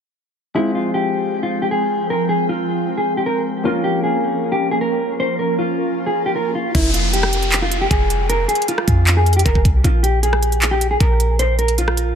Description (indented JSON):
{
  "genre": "hip hop, trap",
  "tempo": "155 BPM",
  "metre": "4/4",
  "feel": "half-time",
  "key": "F minor",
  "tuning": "A4 = 439 Hz",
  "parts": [
    { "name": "dark concert grand piano", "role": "accompaniment", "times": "0.5-6.8 s", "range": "Ab3 to Bb4", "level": "-26 LUFS", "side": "left 3 dB", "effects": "none" },
    { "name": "mellow electric guitar", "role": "melody", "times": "0.6-12.2 s", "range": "E4 to C5", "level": "-19 LUFS", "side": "right 1 dB", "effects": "warbly pitch drift, dub echo" },
    { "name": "glassy FM pad", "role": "sustained chords", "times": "0.7-6.7 s", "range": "F3 to G5", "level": "-24 LUFS", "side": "left 1 dB", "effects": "ensemble chorus, built-in reverb" },
    { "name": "swell and downlifter", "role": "sound effects", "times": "5.5-9.8 s", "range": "none", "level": "-27 LUFS", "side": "right 1 dB", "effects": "none" },
    { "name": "clean 808-style bass", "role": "bass", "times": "6.7-12.1 s", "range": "F1 to F2", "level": "-17 LUFS", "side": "equal", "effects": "none" },
    { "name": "trap drum kit", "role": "drums", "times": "6.7-12.1 s", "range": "crash cymbal, handclaps, hi-hat, kick drum, rim click", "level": "-19 LUFS", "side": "equal", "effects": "dub echo" }
  ],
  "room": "digital ambience",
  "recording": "echo-heavy mix",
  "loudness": "-15 LUFS",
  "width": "side -8 dB against mid",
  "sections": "0.6-6.7 A section; 6.7-12.2 B section",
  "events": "swell 5.5-6.7",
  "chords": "0.6 Fmadd9; 3.7 Bbm; 6.7 Fm; 9.8 Bb5"
}